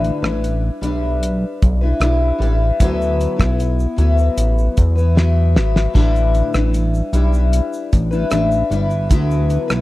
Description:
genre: indie pop, bedroom pop.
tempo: 76 BPM.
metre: 4/4.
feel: straight.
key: D major.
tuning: A4 = 443 Hz.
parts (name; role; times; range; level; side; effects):
picked steel-string acoustic guitar; accompaniment; 0.0-9.8 s; A2 to B4; -20 LUFS; left 3 dB; lush chorus, warbly pitch drift.
chorused synth bass; bass; 0.0-9.8 s; G1 to E2; -16 LUFS; equal; none.
cloth-damped thuddy drum kit; drums; 0.0-9.8 s; hi-hat, kick drum, rim click, shaker, snare drum, splash cymbal; -17 LUFS; equal; none.
room: small room reverb.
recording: dry, close 1970s-style studio recording.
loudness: -14 LUFS.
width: side -17 dB against mid.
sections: 0.0-9.8 A section.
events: drum fill 5.2-6.0.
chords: 0.0 A9sus4; 2.8 D69; 6.0 A9sus4; 9.1 D69.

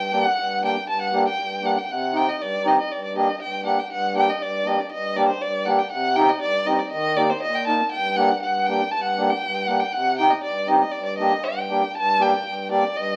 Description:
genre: klezmer.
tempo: 120 BPM.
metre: 2/4.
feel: straight.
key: G harmonic minor.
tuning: A4 = 438 Hz.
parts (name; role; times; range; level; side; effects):
clear violin; melody; 0.0-13.2 s; C5 to A5; -26 LUFS; equal; none.
mellow accordion; accompaniment; 0.0-13.2 s; G2 to Bb4; -24 LUFS; equal; none.
room: wet studio reverb, RT60 0.8 s.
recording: very old 78 rpm record, vinyl crackle.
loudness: -22 LUFS.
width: mono.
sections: 0.0-3.9 A section; 3.9-11.9 A section; 11.9-13.2 B section.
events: none.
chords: 0.0 Gm; 1.9 Cm; 2.9 Gm; 5.9 Cm; 6.9 Eb; 7.9 Gm; 9.9 Cm; 10.9 Gm.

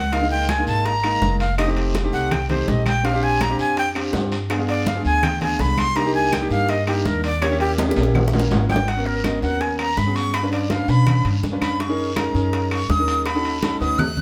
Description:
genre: Afro-Cuban jazz.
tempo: 164 BPM.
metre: 4/4.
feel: straight.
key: G# minor from 8.9 s.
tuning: A4 = 444 Hz.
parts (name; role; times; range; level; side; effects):
breathy bright jazz flute; melody; 0.0-14.2 s; G4 to F#6; -25 LUFS; equal; none.
upright bass; bass; 0.0-14.2 s; F1 to B2; -25 LUFS; equal; none.
clear concert grand piano; accompaniment; 0.1-14.0 s; Ab3 to B4; -27 LUFS; equal; none.
bongos; percussion; 0.1-14.2 s; none; -34 LUFS; equal; none.
congas; percussion; 0.1-14.2 s; none; -30 LUFS; equal; none.
guiro; percussion; 0.1-14.2 s; none; -40 LUFS; equal; none.
timbales; percussion; 0.1-14.1 s; none; -32 LUFS; equal; none.
claves; percussion; 0.5-14.2 s; none; -38 LUFS; equal; none.
room: wet studio reverb, RT60 0.7 s.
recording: heard from further back in the room.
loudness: -20 LUFS.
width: mono.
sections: 0.0-8.9 A section; 8.9-14.2 A section.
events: flute solo 0.0-14.2; drum fill 7.8-8.9, 14.0.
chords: 0.1 Db69; 1.6 F9; 3.0 Bb69; 4.5 G7b9; 6.0 Cm9; 7.4 Eb7b9; 8.9 G#m11; 10.3 G7#11; 11.8 F#6; 13.3 D#m7b5.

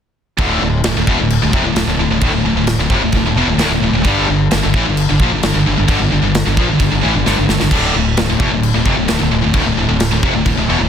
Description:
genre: heavy metal.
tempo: 131 BPM.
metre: 4/4.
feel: straight.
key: D minor.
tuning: A4 = 442 Hz.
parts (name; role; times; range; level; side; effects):
distorted electric guitar; riff; 0.4-10.9 s; D2 to G3; -21 LUFS; equal; overdrive.
high-gain distorted guitar; riff; 0.4-10.9 s; D2 to G3; -18 LUFS; left 10 dB; distortion.
scooped high-gain guitar; riff; 0.4-10.9 s; D2 to G3; -19 LUFS; right 9 dB; distortion.
fuzz fingered electric bass; bass; 0.4-10.9 s; D1 to Bb1; -19 LUFS; equal; overdrive.
big rock drum kit; drums; 0.4-10.6 s; china cymbal, crash cymbal, kick drum, snare drum; -18 LUFS; equal; none.
room: light reverb.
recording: dense, heavily limited modern master.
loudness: -12 LUFS.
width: side -8 dB against mid.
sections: 0.4-10.9 A section.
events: drum fill 7.3-7.7.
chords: 0.4 Dm; 4.1 G5; 7.7 Dm.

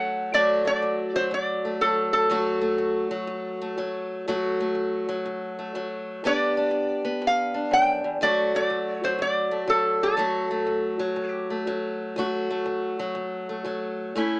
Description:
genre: acoustic country blues, solo or duo.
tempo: 122 BPM.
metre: 4/4.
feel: swing 66% on 8ths.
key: D major.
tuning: A4 = 440 Hz.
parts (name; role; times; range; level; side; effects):
metal-body resonator slide guitar; melody; 0.0-12.0 s; A4 to G5; -23 LUFS; equal; none.
fingerpicked steel-string acoustic guitar; accompaniment; 0.0-14.4 s; D2 to G4; -26 LUFS; equal; none.
room: moderate booth ambience, RT60 0.2 s.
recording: small speaker sound.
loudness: -23 LUFS.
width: side -26 dB against mid.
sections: 0.0-14.4 A section.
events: none.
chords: 0.0 D; 6.2 G; 8.2 D.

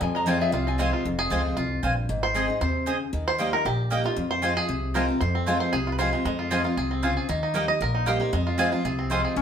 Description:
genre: bluegrass.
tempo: 231 BPM.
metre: 4/4.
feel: straight.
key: F minor.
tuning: A4 = 440 Hz.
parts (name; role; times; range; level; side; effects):
bluegrass banjo; melody; 0.0-9.4 s; F3 to Eb5; -28 LUFS; right 2 dB; none.
lap resonator guitar; second line; 0.0-0.8, 9.4 s; Db4 to Bb5; -28 LUFS; left 4 dB; none.
picked steel-string acoustic guitar; accompaniment; 0.0-9.4 s; F2 to Ab4; -28 LUFS; left 1 dB; none.
upright bass; bass; 0.0-9.4 s; F1 to F2; -29 LUFS; equal; none.
mandolin; stabs; 0.3-9.2 s; Bb3 to Ab5; -28 LUFS; right 2 dB; none.
room: moderate studio reverb, RT60 0.8 s.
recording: band playing live in one room.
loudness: -22 LUFS.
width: side -8 dB against mid.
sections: 0.0-1.1 A section; 1.1-9.4 A section.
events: resonator guitar played with a steel bar solo 0.0-1.1; five-string banjo solo 1.1-9.4.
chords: 0.0 Fm; 2.1 Ab; 3.1 Eb; 4.2 Fm; 7.3 Eb; 8.3 Fm.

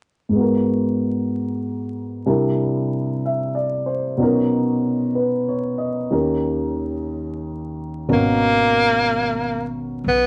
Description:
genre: jazz ballad.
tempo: 62 BPM.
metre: 4/4.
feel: swing 66% on 8ths.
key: G# minor.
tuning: A4 = 441 Hz.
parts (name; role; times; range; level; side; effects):
dark concert grand piano; accompaniment; 0.3-10.3 s; D#2 to E5; -22 LUFS; equal; none.
edgy tenor saxophone; melody; 8.1-10.3 s; A#3 to B3; -20 LUFS; equal; none.
upright bass; bass; 8.1-10.3 s; G#1 to B1; -30 LUFS; equal; none.
room: moderate studio reverb, RT60 0.7 s.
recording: vinyl crackle, nothing above 10.4 kHz.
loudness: -21 LUFS.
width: mono.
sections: 0.4-8.1 A section; 8.1-10.3 B section.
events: none.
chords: 0.4 G#m9; 2.3 C9; 4.2 Bmaj7; 6.1 D#7; 8.1 G#m11.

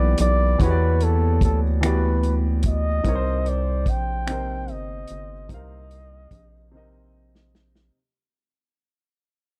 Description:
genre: slow six-eight R&B.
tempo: 49 BPM (dotted quarters).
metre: 6/8.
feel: straight.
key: unclear.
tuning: A4 = 440 Hz.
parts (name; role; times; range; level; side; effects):
warm flugelhorn; melody; 0.0-7.1 s; A4 to G5; -30 LUFS; equal; slapback echo.
warm grand piano; accompaniment; 0.0-8.0 s; C3 to F5; -30 LUFS; equal; none.
rubbery square bass; bass; 0.0-7.9 s; G1 to E2; -25 LUFS; equal; none.
warm soul drum kit; drums; 0.2-7.9 s; finger snaps, hi-hat, kick drum, snare drum; -26 LUFS; equal; none.
room: little or no reverb.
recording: none.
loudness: -21 LUFS.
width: mono.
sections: 0.0-7.9 A section.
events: fade-out 0.0-7.9; drum fill 6.7-7.9.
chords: 0.0 Em9; 3.0 Cm7.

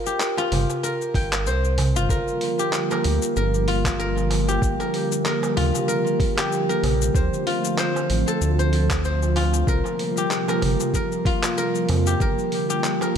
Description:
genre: organic downtempo.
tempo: 95 BPM.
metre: 4/4.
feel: swing 56% on 16ths.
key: G minor.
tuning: A4 = 441 Hz.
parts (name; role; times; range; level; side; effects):
guzheng; arpeggios; 0.0-13.2 s; F4 to G5; -24 LUFS; left 1 dB; vintage 12-bit sampler grit, tape echo.
dusty soul sampler-style drum kit; drums; 0.1-13.2 s; handclaps, hi-hat, shaker; -29 LUFS; left 1 dB; overdrive.
darbuka; percussion; 0.4-13.1 s; none; -31 LUFS; right 4 dB; none.
round analog bass; bass; 0.5-13.2 s; G1 to F2; -22 LUFS; equal; sidechain pumping.
electronic kick drum; drums; 1.1-12.3 s; none; -24 LUFS; equal; overdrive.
airy breathy pad; sustained chords; 2.3-13.2 s; C3 to G4; -25 LUFS; right 1 dB; chorus, sidechain pumping.
room: moderate concert hall reverb, RT60 2.0 s, digital ambience.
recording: none.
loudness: -20 LUFS.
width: side -8 dB against mid.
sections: 0.0-13.2 A section.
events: none.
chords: 0.0 C7sus4; 2.1 Gm7; 7.2 Dm7; 9.7 C7sus4; 12.2 Gm7.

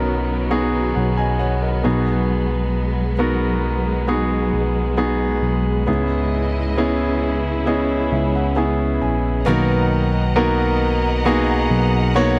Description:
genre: pop ballad.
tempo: 67 BPM.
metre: 4/4.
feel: straight.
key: B major.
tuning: A4 = 440 Hz.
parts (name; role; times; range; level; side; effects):
clear concert grand piano; accompaniment; 0.0-12.4 s; G#2 to G#5; -22 LUFS; equal; none.
warm studio string section; sustained chords; 0.0-12.4 s; C#3 to A#5; -28 LUFS; equal; none.
tine electric piano; bass; 0.0-12.4 s; A#1 to C#2; -24 LUFS; equal; none.
picked steel-string acoustic guitar; arpeggios; 9.4-12.4 s; B2 to A#4; -28 LUFS; equal; none.
room: small room ambience.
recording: dry, close 1970s-style studio recording.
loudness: -19 LUFS.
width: mono.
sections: 0.0-9.5 A section; 9.5-12.4 B section.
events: grand piano fill 6.8-9.5.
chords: 0.0 B6; 1.9 G#m7/B; 5.9 C#m7; 9.5 Bmaj7.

